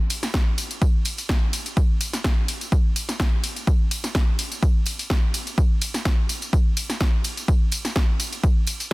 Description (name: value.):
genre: house.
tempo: 126 BPM.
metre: 4/4.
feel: swing 54% on 16ths.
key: none.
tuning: none.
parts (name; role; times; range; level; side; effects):
punchy analog drum machine; drums; 0.1-8.9 s; hi-hat, ride cymbal, snare drum, tambourine; -27 LUFS; equal; overdrive.
tambourine; percussion; 0.1-8.9 s; none; -38 LUFS; right 9 dB; none.
electronic kick drum; drums; 0.3-8.5 s; none; -20 LUFS; equal; overdrive.
room: little or no reverb.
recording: dense, heavily limited modern master.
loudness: -20 LUFS.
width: side -22 dB against mid.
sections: 0.0-8.9 A section.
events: none.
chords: none.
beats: 0.34 0.82 1.29 | 1.77 2.25 2.72 3.20 | 3.67 4.15 4.63 5.10 | 5.58 6.05 6.53 7.01 | 7.48 7.96 8.44 8.91.